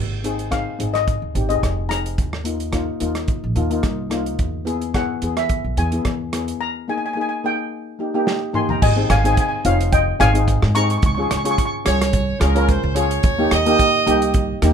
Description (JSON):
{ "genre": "calypso", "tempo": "108 BPM", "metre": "4/4", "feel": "swing 54% on 16ths", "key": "Ab major", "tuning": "A4 = 440 Hz", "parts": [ { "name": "upright bass", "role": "bass", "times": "0.0-14.7 s", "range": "F1 to Ab2", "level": "-22 LUFS", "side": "right 1 dB", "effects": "none" }, { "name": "steel pan", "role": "accompaniment", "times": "0.2-14.7 s", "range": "Bb3 to Bb4", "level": "-22 LUFS", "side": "left 2 dB", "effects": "none" }, { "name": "natural country drum kit", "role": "drums", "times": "0.2-14.7 s", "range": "crash cymbal, hi-hat, kick drum, rim click, snare drum, toms", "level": "-23 LUFS", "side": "right 1 dB", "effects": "none" }, { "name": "steel pan", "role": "melody", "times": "0.5-11.7 s", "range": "Db5 to Db6", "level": "-22 LUFS", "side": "left 2 dB", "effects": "none" }, { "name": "clear horn section", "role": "second line", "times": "11.9-14.6 s", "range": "Bb4 to Eb5", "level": "-20 LUFS", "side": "right 4 dB", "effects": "none" } ], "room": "light reverb", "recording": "minimal, uncompressed stereo recording", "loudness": "-17 LUFS", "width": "side -7 dB against mid", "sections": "0.0-8.8 A section; 8.8-14.7 B section", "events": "drum fill 8.3-8.8", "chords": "0.0 Ab; 2.2 Ebsus2; 4.4 E; 6.6 Ebsus4; 7.7 Eb; 8.8 Ab; 11.0 Db; 13.2 Eb", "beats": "0.52 1.07 1.62 | 2.18 2.73 3.29 3.84 | 4.39 4.95 5.50 6.05 | 6.61 7.16 7.71 8.27 | 8.82 9.37 9.93 10.48 | 11.03 11.58 12.14 12.69 | 13.24 13.79 14.35" }